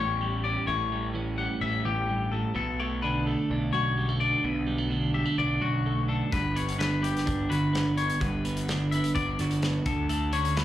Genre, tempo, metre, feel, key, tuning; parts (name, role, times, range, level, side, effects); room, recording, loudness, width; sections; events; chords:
math rock and midwest emo; 128 BPM; 4/4; straight; A4 = 441 Hz
twelve-string electric guitar; accompaniment; 0.0-10.6 s; D2 to G4; -29 LUFS; right 3 dB
twangy electric guitar; arpeggios; 0.0-10.6 s; F#4 to F#5; -30 LUFS; left 7 dB; slapback echo
fuzz picked electric bass; bass; 0.0-10.6 s; G1 to D2; -30 LUFS; equal; overdrive
loose indie drum kit; drums; 6.3-10.6 s; hi-hat, kick drum, snare drum; -33 LUFS; left 1 dB
little or no reverb; live gig heard through the venue's PA, club reverb; -25 LUFS; side -12 dB against mid
0.0-10.6 A section
0.0 A7; 2.6 Bm7; 6.3 Gmaj7; 9.9 Dmaj7